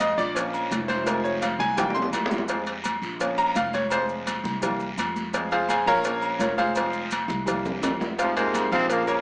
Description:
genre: latin, salsa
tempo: 169 BPM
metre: 4/4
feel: straight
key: F harmonic minor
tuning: A4 = 440 Hz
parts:
  - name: bright concert grand piano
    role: accompaniment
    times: 0.0-9.2 s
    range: E3 to C6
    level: -25 LUFS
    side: equal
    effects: none
  - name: upright bass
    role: bass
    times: 0.0-9.2 s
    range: F1 to F2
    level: -34 LUFS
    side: equal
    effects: none
  - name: agogo bells and timbales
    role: percussion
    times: 0.0-9.2 s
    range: none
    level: -30 LUFS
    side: equal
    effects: none
  - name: congas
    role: percussion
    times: 0.0-9.2 s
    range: none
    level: -35 LUFS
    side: equal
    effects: none
  - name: cowbell and bongos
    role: percussion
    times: 0.0-9.1 s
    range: none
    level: -31 LUFS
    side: equal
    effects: none
  - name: guiro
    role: percussion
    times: 0.0-9.2 s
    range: none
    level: -37 LUFS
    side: equal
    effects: none
  - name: maracas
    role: percussion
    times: 0.0-9.2 s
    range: none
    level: -42 LUFS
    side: equal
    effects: none
  - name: brilliant trombone section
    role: melody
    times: 8.2-9.2 s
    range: Ab2 to C4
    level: -24 LUFS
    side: equal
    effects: none
room: light reverb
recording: small speaker sound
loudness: -22 LUFS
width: side -38 dB against mid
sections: 0.0-8.2 A section; 8.2-9.2 B section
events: grand piano solo 0.0-8.2; drum fill 1.8-2.5, 7.7-8.2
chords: 0.4 Bbm; 1.1 Fm; 1.8 C7; 2.5 Fm; 3.2 Bbm; 3.9 Fm; 4.6 C7; 5.3 Fm; 6.1 Bbm; 6.8 Fm; 7.5 C7; 8.2 Fm

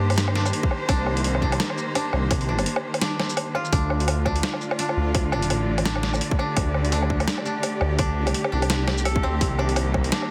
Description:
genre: half-time drum and bass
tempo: 169 BPM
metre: 4/4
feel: swing 57% on 16ths, half-time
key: D phrygian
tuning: A4 = 440 Hz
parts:
  - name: rich studio cello section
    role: sustained chords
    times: 0.0-10.3 s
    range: D3 to D5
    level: -31 LUFS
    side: equal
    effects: sidechain pumping
  - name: koto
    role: arpeggios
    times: 0.0-10.3 s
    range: C4 to A4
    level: -32 LUFS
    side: equal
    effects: dub echo
  - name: dark detuned saw bass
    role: bass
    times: 0.0-10.1 s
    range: A1 to G2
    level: -26 LUFS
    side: equal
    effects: none
  - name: boom bap sampler-style drum kit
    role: drums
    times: 0.1-10.3 s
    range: hi-hat, shaker, snare drum, woodblock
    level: -29 LUFS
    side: equal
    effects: small room ambience
  - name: electronic kick drum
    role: drums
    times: 0.6-10.0 s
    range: none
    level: -26 LUFS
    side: equal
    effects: overdrive, small room ambience
room: light reverb, digital ambience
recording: heavily compressed radio sound, multiband compression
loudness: -23 LUFS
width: mono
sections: 0.0-10.3 A section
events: none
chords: 0.0 Cm7; 3.7 Dm; 9.4 Cm7

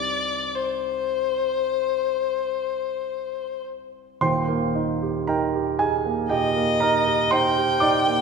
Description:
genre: classical, romantic duo for violin and grand piano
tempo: 48-60 BPM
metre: 4/4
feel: rubato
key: C minor, Eb major from 4.2 s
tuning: A4 = 440 Hz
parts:
  - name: rich violin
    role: melody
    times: 0.0-8.2 s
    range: C5 to G5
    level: -23 LUFS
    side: left 4 dB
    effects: none
  - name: warm baby grand piano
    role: accompaniment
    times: 0.0-8.2 s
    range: Eb1 to D6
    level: -22 LUFS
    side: right 4 dB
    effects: none
room: wet concert hall reverb, RT60 1.8 s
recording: none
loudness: -21 LUFS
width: side -5 dB against mid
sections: 0.0-4.2 A section; 4.2-8.2 B section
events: none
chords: 0.0 Cm; 4.2 Eb

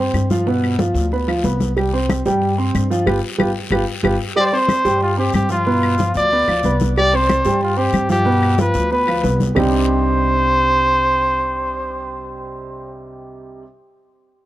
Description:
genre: latin, salsa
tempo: 185 BPM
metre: 4/4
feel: straight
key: C harmonic minor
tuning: A4 = 439 Hz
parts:
  - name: warm upright piano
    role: accompaniment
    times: 0.0-13.6 s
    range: B2 to C6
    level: -20 LUFS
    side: right 2 dB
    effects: none
  - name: upright bass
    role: bass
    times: 0.0-13.6 s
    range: G1 to G2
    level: -22 LUFS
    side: left 1 dB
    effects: none
  - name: claves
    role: percussion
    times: 0.1-9.6 s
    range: none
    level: -28 LUFS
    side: left 5 dB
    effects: none
  - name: guiro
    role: percussion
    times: 0.1-9.6 s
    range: none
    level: -34 LUFS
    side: left 7 dB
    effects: none
  - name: congas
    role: percussion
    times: 0.2-9.6 s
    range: none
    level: -23 LUFS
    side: left 2 dB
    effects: none
  - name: warm trumpet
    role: melody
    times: 4.4-12.9 s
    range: F4 to D5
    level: -18 LUFS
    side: equal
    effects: none
room: light reverb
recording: worn, warbling old tape, cassette tape, warbly pitch drift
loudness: -15 LUFS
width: side -14 dB against mid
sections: 0.0-4.4 A section; 4.4-9.6 B section; 9.6-12.2 C section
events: band accent 3.1-4.4; drum fill 3.7-4.4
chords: 0.5 G7; 1.8 C5; 3.1 G7; 4.4 C5; 5.7 G7; 7.0 C5; 8.3 G7; 9.6 Cmadd9

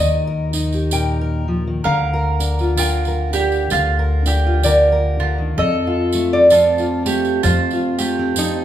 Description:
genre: acoustic folk duo or small band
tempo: 64 BPM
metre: 4/4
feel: swing 59% on 8ths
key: Bb major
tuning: A4 = 440 Hz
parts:
  - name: lap resonator guitar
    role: melody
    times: 0.0-8.6 s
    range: Eb4 to G5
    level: -18 LUFS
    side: equal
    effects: none
  - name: fingerpicked steel-string acoustic guitar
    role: accompaniment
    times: 0.0-8.6 s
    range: F2 to Bb4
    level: -21 LUFS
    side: left 2 dB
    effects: none
  - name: upright bass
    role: bass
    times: 0.0-8.6 s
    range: D2 to F2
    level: -21 LUFS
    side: equal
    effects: none
  - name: tambourine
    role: percussion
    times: 0.5-8.6 s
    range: none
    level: -27 LUFS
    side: right 6 dB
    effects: none
  - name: mandolin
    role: arpeggios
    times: 1.8-8.6 s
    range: F4 to Bb4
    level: -22 LUFS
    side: right 6 dB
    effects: none
room: wet large studio reverb, RT60 1.0 s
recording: band playing live in one room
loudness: -15 LUFS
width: side -11 dB against mid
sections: 0.0-8.6 A section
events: none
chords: 0.0 Eb; 1.8 Bb/D; 5.6 Fadd9

